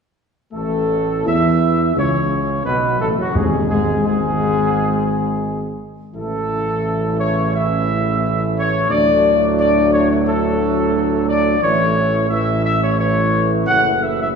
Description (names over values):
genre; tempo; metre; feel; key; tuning
classical; 87 BPM; 4/4; straight; A major; A4 = 441 Hz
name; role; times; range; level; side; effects
dark trumpet section; melody; 0.5-14.3 s; F#4 to F#5; -18 LUFS; left 1 dB; none
bright trombone section; sustained chords; 0.5-14.3 s; F#2 to F#3; -24 LUFS; right 2 dB; none
mellow French horn section; sustained chords; 0.5-14.3 s; F#3 to E4; -23 LUFS; left 3 dB; none
warm tuba; bass; 0.5-14.4 s; F#1 to E2; -21 LUFS; right 3 dB; none
timpani; percussion; 3.3-4.4 s; E2; -23 LUFS; left 1 dB; none
room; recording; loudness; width
wet recital hall reverb, RT60 1.5 s; heard from further back in the room; -15 LUFS; side -6 dB against mid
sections
0.5-14.4 A section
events
none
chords
0.5 A; 3.4 N.C.; 6.1 A; 8.9 D; 11.6 A